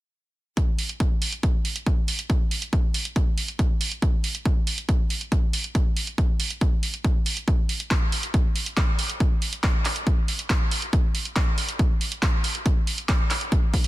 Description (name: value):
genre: trance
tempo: 139 BPM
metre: 4/4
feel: straight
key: none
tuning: none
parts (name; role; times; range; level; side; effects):
- electronic kick drum; drums; 0.6-13.8 s; none; -22 LUFS; equal; none
- punchy analog drum machine; drums; 0.6-13.9 s; handclaps, hi-hat; -28 LUFS; right 2 dB; sidechain pumping on hats
room: little or no reverb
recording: dense, heavily limited modern master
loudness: -22 LUFS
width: side -17 dB against mid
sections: 0.6-13.9 A section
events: none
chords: none